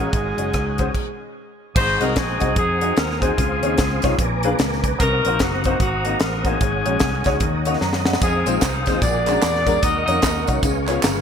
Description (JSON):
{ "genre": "uptempo gospel", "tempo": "148 BPM", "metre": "4/4", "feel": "swing 61% on 8ths", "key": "unclear", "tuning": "A4 = 440 Hz", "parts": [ { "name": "warm saxophone section", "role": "melody", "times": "0.0-10.6 s", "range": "Bb3 to Eb5", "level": "-24 LUFS", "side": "left 1 dB", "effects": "ping-pong delay" }, { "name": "warm tenor saxophone", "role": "melody", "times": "0.0-1.2 s", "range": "Ab3", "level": "-30 LUFS", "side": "right 4 dB", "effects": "ping-pong delay" }, { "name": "warm upright piano", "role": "accompaniment", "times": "0.0-11.2 s", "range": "Ab2 to Bb5", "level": "-24 LUFS", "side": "left 3 dB", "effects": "ensemble chorus" }, { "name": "mellow tonewheel organ", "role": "sustained chords", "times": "0.0-11.2 s", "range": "Bb4 to Eb6", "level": "-28 LUFS", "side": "right 3 dB", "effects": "fast rotary speaker, chorus vibrato" }, { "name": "muted French horn section", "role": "sustained chords", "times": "0.0-0.9 s", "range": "Gb3 to Gb4", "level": "-38 LUFS", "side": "left 1 dB", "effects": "none" }, { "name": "fingered electric bass", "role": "bass", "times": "0.0-11.2 s", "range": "Gb1 to Gb2", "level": "-25 LUFS", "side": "right 1 dB", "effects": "none" }, { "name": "crisp fusion drum kit", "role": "drums", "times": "0.1-11.2 s", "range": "crash cymbal, hi-hat, kick drum, rim click, snare drum", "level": "-22 LUFS", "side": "equal", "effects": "gated reverb" }, { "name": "tambourine and handclaps", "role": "percussion", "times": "8.2-11.1 s", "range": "none", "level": "-30 LUFS", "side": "right 8 dB", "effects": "none" } ], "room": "light reverb, studio ambience", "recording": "bright 1980s-style digital production", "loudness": "-17 LUFS", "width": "side -7 dB against mid", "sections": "0.0-1.8 A section; 1.8-11.2 B section", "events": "stop 0.9-1.8; upright piano fill 7.6-8.2; drum fill 7.8-8.2", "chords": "0.1 Ab7sus4; 0.9 Absus4; 1.8 Ab7; 3.4 Dbmaj9; 4.2 Bb7b9; 5.0 Cm7b5; 6.6 Ab7sus4; 7.4 Ebm7; 8.2 Fm7; 9.0 Bb7alt; 9.8 Ebm7; 10.6 Db7", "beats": "| 0.13 0.54 0.94 1.35 | 1.75 2.16 2.57 2.97 | 3.38 3.78 4.18 4.59 | 4.99 5.40 5.80 6.21 | 6.61 7.01 7.42 7.82 | 8.22 8.62 9.03 9.43 | 9.83 10.23 10.63 11.04" }